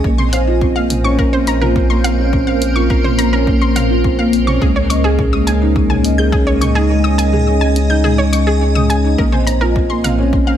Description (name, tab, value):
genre	piano and strings electronica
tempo	105 BPM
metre	4/4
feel	straight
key	unclear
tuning	A4 = 440 Hz
part	granular cloud pad	sustained chords	0.0-10.6 s	Bb3 to Ab5	-21 LUFS	left 1 dB	built-in reverb, sidechain pumping
part	felt-muted upright piano	riff	0.0-10.6 s	Ab3 to Eb5	-16 LUFS	equal	digital delay
part	warm sub bass	bass	0.0-10.6 s	Bb1 to Db2	-17 LUFS	equal	sidechain pumping
part	electronic kick drum	drums	0.0-10.4 s	none	-18 LUFS	equal	small room ambience
part	analog pluck	arpeggios	0.2-10.5 s	Ab4 to G6	-22 LUFS	left 1 dB	chorus, sidechain pumping, digital delay
part	deep house drum kit	drums	0.2-10.2 s	hi-hat, toms	-24 LUFS	right 1 dB	small room ambience
room	moderate recital hall reverb, RT60 1.5 s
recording	none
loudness	-12 LUFS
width	side -10 dB against mid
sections	0.0-10.6 A section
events	kick drops out 6.9-9.2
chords	0.0 Bbmadd9; 4.6 Dbsus2; 9.2 Bbmadd9